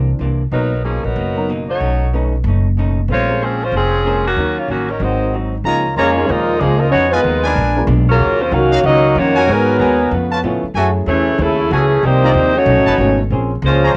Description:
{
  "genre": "jazz",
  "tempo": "188 BPM",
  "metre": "4/4",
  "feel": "swing 63% on 8ths",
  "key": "Db major from 5.6 s",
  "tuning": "A4 = 440 Hz",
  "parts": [
    { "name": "vintage hollow-body jazz guitar", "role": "accompaniment", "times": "0.0-14.0 s", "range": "Ab2 to C5", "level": "-28 LUFS", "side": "equal", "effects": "cassette tape" },
    { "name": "warm baby grand piano", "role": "accompaniment", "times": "0.0-13.5 s", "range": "Eb3 to B4", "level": "-25 LUFS", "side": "equal", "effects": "cassette tape" },
    { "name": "upright bass", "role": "bass", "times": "0.0-14.0 s", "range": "F1 to A2", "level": "-20 LUFS", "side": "equal", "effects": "none" },
    { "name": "clear saxophone section", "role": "melody", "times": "0.5-13.9 s", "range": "Eb3 to F5", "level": "-19 LUFS", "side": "equal", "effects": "cassette tape" },
    { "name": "clear trombone section", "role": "second line", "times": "5.0-13.9 s", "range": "Bb2 to Ab4", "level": "-20 LUFS", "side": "equal", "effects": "cassette tape, plate reverb" },
    { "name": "mellow trumpet section", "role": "stabs", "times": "5.7-13.9 s", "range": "Cb4 to Bb5", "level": "-21 LUFS", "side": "equal", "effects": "cassette tape, plate reverb" }
  ],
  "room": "moderate booth ambience, RT60 0.2 s",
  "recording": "home recording on cassette",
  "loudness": "-15 LUFS",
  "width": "mono",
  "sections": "0.0-5.6 A section; 5.6-14.0 B section",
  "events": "none",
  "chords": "0.0 C9; 0.5 Bmaj7; 1.8 B9; 3.1 Bbm9; 4.4 Ebm7; 5.0 Ab7; 5.6 Db69; 6.9 Fm7b5; 7.6 Bb7b9; 8.2 Ebm9; 9.5 Abm9; 10.1 Db7alt; 10.8 Gbm9; 12.0 Cm11; 12.7 Cb9; 13.3 Bbm9",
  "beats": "0.20 | 0.52 0.84 1.17 1.49 | 1.81 2.13 2.45 2.77 | 3.09 3.41 3.73 4.05 | 4.37 4.69 5.01 5.33 | 5.65 5.97 6.29 6.61 | 6.93 7.25 7.57 7.88 | 8.20 8.52 8.84 9.16 | 9.48 9.80 10.12 10.44 | 10.76 11.08 11.40 11.72 | 12.04 12.35 12.67 12.99 | 13.31 13.63 13.95"
}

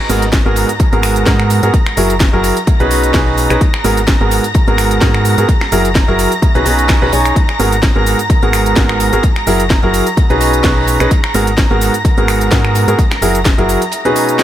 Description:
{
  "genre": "piano house",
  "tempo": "128 BPM",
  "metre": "4/4",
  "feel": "swing 54% on 16ths",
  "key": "G# minor",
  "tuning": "A4 = 439 Hz",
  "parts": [
    { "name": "rich studio string section", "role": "sustained chords", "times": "0.0-14.4 s", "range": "A#5 to A#6", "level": "-20 LUFS", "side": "equal", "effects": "vintage 12-bit sampler grit, sidechain pumping" },
    { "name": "clear grand piano", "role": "riff", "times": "0.1-14.4 s", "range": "G#2 to C#5", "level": "-14 LUFS", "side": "right 1 dB", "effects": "sidechain pumping, tape echo" },
    { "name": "solid FM bass", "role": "bass", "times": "0.1-13.8 s", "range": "F#1 to G#2", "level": "-16 LUFS", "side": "equal", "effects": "sidechain pumping" },
    { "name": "house drum kit", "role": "drums", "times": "0.1-14.4 s", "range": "finger snaps, hi-hat, shaker, snare drum", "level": "-19 LUFS", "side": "equal", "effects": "studio reverb" },
    { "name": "open jazz drum kit", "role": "drums", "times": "0.1-14.4 s", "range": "hi-hat, snare drum", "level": "-30 LUFS", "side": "right 3 dB", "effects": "none" },
    { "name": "electronic kick drum", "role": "drums", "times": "0.3-13.6 s", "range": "none", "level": "-13 LUFS", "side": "equal", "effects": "studio reverb" },
    { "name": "swell", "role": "sound effects", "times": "14.0-14.4 s", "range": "none", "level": "-33 LUFS", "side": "left 6 dB", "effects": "none" }
  ],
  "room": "light reverb, small room ambience",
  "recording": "echo-heavy mix",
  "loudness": "-10 LUFS",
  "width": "side -12 dB against mid",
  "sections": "0.0-14.4 A section",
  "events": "none",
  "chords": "0.0 G#m9; 1.7 F#9; 2.7 B69; 3.6 G#m9; 5.5 F#9; 6.4 B69; 7.4 G#m9; 9.2 F#9; 10.2 B69; 11.1 G#m9; 13.0 F#9; 13.9 B69",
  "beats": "0.33 0.80 1.27 | 1.74 2.21 2.67 3.14 | 3.61 4.08 4.55 5.02 | 5.49 5.96 6.42 6.89 | 7.36 7.83 8.30 8.77 | 9.24 9.71 10.17 10.64 | 11.11 11.58 12.05 12.52 | 12.99 13.46 13.92 14.39"
}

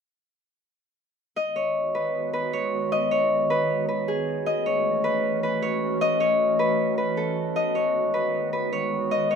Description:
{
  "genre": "hip hop",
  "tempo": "155 BPM",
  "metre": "4/4",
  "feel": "half-time",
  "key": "G# phrygian",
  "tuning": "A4 = 440 Hz",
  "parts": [
    { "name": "Celtic harp", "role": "melody", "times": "1.4-9.4 s", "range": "G#4 to D#5", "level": "-22 LUFS", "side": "left 1 dB", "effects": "none" },
    { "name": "glassy FM pad", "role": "sustained chords", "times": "1.4-9.4 s", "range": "D#3 to F#4", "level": "-30 LUFS", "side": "right 1 dB", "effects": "ensemble chorus, built-in reverb" }
  ],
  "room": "moderate studio reverb, RT60 0.6 s",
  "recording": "rough home demo mix",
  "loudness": "-22 LUFS",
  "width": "side -6 dB against mid",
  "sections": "1.4-9.4 A section",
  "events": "none",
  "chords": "1.4 G#m7; 4.5 A6; 7.6 G#m7",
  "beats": "| 1.37 1.75 2.14 2.53 | 2.92 3.30 3.69 4.08 | 4.46 4.85 5.24 5.62 | 6.01 6.40 6.79 7.17 | 7.56 7.95 8.34 8.72 | 9.11"
}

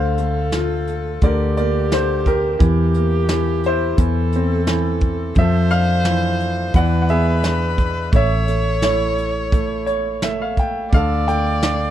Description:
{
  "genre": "folk",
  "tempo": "87 BPM",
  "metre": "4/4",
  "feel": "straight",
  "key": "D minor",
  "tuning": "A4 = 443 Hz",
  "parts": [
    { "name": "bright upright piano", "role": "melody", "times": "0.0-11.9 s", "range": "D3 to G5", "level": "-21 LUFS", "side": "right 1 dB", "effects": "none" },
    { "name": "rich viola", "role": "second line", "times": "0.0-11.9 s", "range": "G4 to D5", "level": "-25 LUFS", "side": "left 1 dB", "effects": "none" },
    { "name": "fingered electric bass", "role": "bass", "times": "0.0-11.9 s", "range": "A1 to F2", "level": "-20 LUFS", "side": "left 1 dB", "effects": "none" },
    { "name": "soft brush drum kit", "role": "drums", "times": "0.2-11.8 s", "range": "hi-hat, kick drum, snare drum", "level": "-19 LUFS", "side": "equal", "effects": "none" }
  ],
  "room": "little or no reverb",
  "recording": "dark, warm production",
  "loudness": "-16 LUFS",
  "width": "side -11 dB against mid",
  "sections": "0.0-11.9 A section",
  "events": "upright piano fill 9.5-10.9",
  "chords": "0.0 Dm7; 2.6 Edim; 5.4 Dmadd9/F; 6.7 E7; 8.1 A; 10.9 D5",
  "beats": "0.53 1.23 1.92 | 2.61 3.30 3.99 4.67 | 5.36 6.05 6.74 7.43 | 8.13 8.83 9.52 10.22 | 10.92 11.62"
}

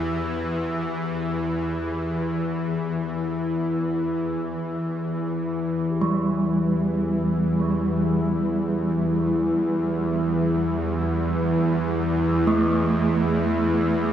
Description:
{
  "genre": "dark ambient drone",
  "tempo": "free time",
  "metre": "none",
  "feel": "none",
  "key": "E minor",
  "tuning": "A4 = 441 Hz",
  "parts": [
    { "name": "bowed-like drone", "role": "drone", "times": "0.0-14.1 s", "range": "E2 to E3", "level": "-22 LUFS", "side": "equal", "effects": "built-in reverb" },
    { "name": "quartz singing bowl", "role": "texture", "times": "0.0-14.1 s", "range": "G4", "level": "-42 LUFS", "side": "left 4 dB", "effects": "none" },
    { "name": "gamelan-type bronze metallophone", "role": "arpeggios", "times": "6.0-14.1 s", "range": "G3 to A3", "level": "-26 LUFS", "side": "right 2 dB", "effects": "analog delay" }
  ],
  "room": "wet spring reverb, RT60 2.4 s",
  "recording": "echo-heavy mix",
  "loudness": "-21 LUFS",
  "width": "side -10 dB against mid",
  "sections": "0.0-5.9 A section; 5.9-14.1 B section",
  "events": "none",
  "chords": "0.0 Em",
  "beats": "free time"
}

